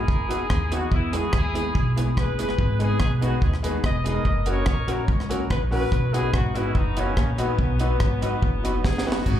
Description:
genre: ska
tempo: 144 BPM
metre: 4/4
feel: straight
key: B major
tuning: A4 = 440 Hz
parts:
  - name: clear horn section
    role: melody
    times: 0.0-9.4 s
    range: F#3 to D#5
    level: -29 LUFS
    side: left 1 dB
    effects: dub echo, slapback echo
  - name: upright bass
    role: bass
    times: 0.0-9.4 s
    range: E1 to E2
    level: -24 LUFS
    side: equal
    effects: none
  - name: electric guitar through a small old amp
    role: accompaniment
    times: 0.1-9.2 s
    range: F#3 to G#4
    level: -31 LUFS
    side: right 1 dB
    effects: slapback echo
  - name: deep reggae drum kit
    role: drums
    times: 0.1-9.4 s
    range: crash cymbal, hi-hat, kick drum, rim click, snare drum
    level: -25 LUFS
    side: equal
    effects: none
  - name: bright upright piano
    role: stabs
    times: 2.8-9.2 s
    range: C#4 to B4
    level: -31 LUFS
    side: left 3 dB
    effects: dub echo, slapback echo
  - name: cabasa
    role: percussion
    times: 9.3-9.4 s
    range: none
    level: -52 LUFS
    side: right 2 dB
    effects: none
room: little or no reverb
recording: live gig heard through the venue's PA, club reverb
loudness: -20 LUFS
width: side -11 dB against mid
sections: 0.0-9.3 A section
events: drum fill 8.8-9.3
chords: 0.0 B; 2.6 G#m; 4.3 F#; 5.9 B

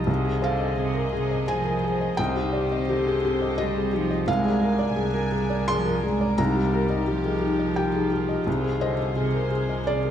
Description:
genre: neoclassical piano and strings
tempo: 86 BPM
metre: 3/4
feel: rubato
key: unclear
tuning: A4 = 440 Hz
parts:
  - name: warm cello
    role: second line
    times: 0.0-10.1 s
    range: C3 to Ab3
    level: -28 LUFS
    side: right 4 dB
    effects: none
  - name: felt-muted upright piano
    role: accompaniment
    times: 0.0-10.1 s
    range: C2 to C6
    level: -25 LUFS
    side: left 2 dB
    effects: none
  - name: warm studio string section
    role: sustained chords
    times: 0.0-10.1 s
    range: D4 to Ab5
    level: -33 LUFS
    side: left 1 dB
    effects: none
  - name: marimba with soft mallets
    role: arpeggios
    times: 0.0-10.1 s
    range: C4 to Ab5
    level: -31 LUFS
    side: left 3 dB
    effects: none
  - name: warm double bass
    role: bass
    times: 0.0-10.1 s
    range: C2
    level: -30 LUFS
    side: right 1 dB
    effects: none
room: wet recital hall reverb, RT60 1.4 s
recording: recorded in a church or concert hall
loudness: -22 LUFS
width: side -9 dB against mid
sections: 0.0-10.1 A section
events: none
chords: 0.1 Ab/C; 2.2 Cmadd9; 4.3 Bb7/C; 6.4 Ebadd9/C; 8.5 Ab/C

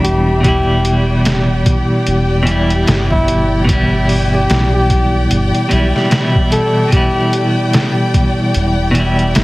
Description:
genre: trip hop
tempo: 74 BPM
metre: 4/4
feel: swing 59% on 16ths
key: E minor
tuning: A4 = 435 Hz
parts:
  - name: trumpet with bucket mute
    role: melody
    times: 0.0-7.5 s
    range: E4 to A4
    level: -20 LUFS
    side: left 1 dB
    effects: tape echo
  - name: clean electric guitar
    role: accompaniment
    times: 0.0-9.4 s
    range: B2 to E4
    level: -15 LUFS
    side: equal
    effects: tremolo, tape echo
  - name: rich studio string section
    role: sustained chords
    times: 0.0-9.4 s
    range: G4 to B5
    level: -20 LUFS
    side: left 1 dB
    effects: none
  - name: round analog bass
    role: bass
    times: 0.0-9.4 s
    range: E1 to B1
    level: -17 LUFS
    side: equal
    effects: none
  - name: trip hop sampler-style drum kit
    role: drums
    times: 0.0-9.4 s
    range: hi-hat, kick drum, snare drum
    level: -16 LUFS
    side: equal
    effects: small room ambience
room: light reverb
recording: heavily compressed radio sound, multiband compression, vinyl crackle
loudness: -11 LUFS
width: side -20 dB against mid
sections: 0.0-9.4 A section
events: none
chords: 0.0 Em7

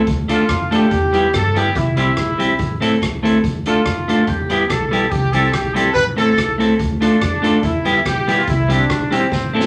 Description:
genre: ska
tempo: 143 BPM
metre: 4/4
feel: swing 53% on 8ths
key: C major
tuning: A4 = 441 Hz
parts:
  - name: upright bass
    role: bass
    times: 0.1-9.7 s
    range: A1 to G2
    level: -26 LUFS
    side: equal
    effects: none
  - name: street-band drum kit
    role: drums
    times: 0.1-9.7 s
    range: hi-hat, kick drum, rim click, snare drum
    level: -26 LUFS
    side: equal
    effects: none
  - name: warm horn section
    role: melody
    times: 0.3-9.7 s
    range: C4 to B4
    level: -22 LUFS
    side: equal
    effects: none
  - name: clean electric guitar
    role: accompaniment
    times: 0.3-9.7 s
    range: G3 to A4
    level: -19 LUFS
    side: equal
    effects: none
room: wet club reverb, RT60 0.6 s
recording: none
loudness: -17 LUFS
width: mono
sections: 0.0-9.7 A section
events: drum fill 9.3-9.7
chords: 0.1 Dm; 0.9 Em; 1.7 C; 2.6 Am; 3.4 Dm; 4.3 Em; 5.1 C; 6.0 Am; 6.8 Dm; 7.6 Em; 8.5 C

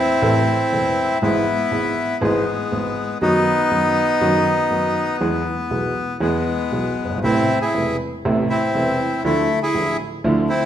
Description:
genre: tango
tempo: 120 BPM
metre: 4/4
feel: rubato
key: A harmonic minor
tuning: A4 = 440 Hz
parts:
  - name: bandoneon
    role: melody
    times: 0.0-10.7 s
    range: G#3 to G#4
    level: -19 LUFS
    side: left 1 dB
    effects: none
  - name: warm grand piano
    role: accompaniment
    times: 0.2-10.5 s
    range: E1 to A4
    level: -21 LUFS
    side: right 1 dB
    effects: none
room: wet recital hall reverb, RT60 1.4 s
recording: minimal, uncompressed stereo recording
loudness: -17 LUFS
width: side -10 dB against mid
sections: 0.0-10.7 A section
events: none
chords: 0.0 Am; 1.2 E/G#; 3.2 B/F#; 5.2 E; 7.2 Amadd9; 9.2 Dmadd9

